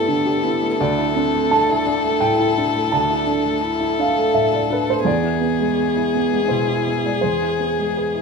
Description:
neoclassical piano and strings; 84 BPM; 3/4; rubato; A4 = 440 Hz
warm violin; melody; 0.0-8.2 s; G#4 to A4; -21 LUFS; left 7 dB
warm cello; second line; 0.0-8.2 s; B3 to G#4; -24 LUFS; right 5 dB
warm upright piano; accompaniment; 0.0-8.2 s; D2 to A5; -20 LUFS; right 2 dB
light reverb; minimal, uncompressed stereo recording; -17 LUFS; side -4 dB against mid
0.0-8.2 A section
0.0 Gadd9; 0.8 Dsus2; 5.1 E

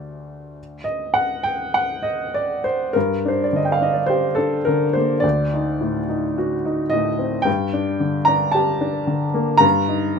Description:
classical, romantic nocturne for solo piano; 49-56 BPM; 4/4; rubato; G minor; A4 = 438 Hz
warm upright piano; solo; 0.0-10.2 s; D2 to Bb5; -18 LUFS; equal
little or no reverb; close, detailed microphones; -18 LUFS; side -6 dB against mid
0.0-10.2 A section
0.0 D; 2.9 Gm; 5.2 D7b9; 7.5 Gm; 9.6 Cm/G (rootless)

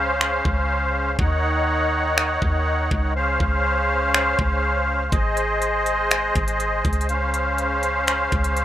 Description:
hip hop, atmospheric cloud-rap; 122 BPM; 4/4; half-time; Db major; A4 = 440 Hz
musette accordion; sustained chords; 0.0-8.6 s; Db3 to Gb5; -21 LUFS; equal; sidechain pumping
soft 808-style bass; bass; 0.0-8.6 s; Ab1 to Eb2; -25 LUFS; equal
trap drum kit; drums; 0.2-8.6 s; finger snaps, hi-hat, kick drum; -23 LUFS; equal; overdrive
light reverb; rough home demo mix; -19 LUFS; side -12 dB against mid
0.0-8.6 A section
break 0.0-5.1
0.0 Dbmaj7; 1.2 Ebm7; 3.2 Dbmaj7; 5.1 Ab; 7.1 Dbmaj7

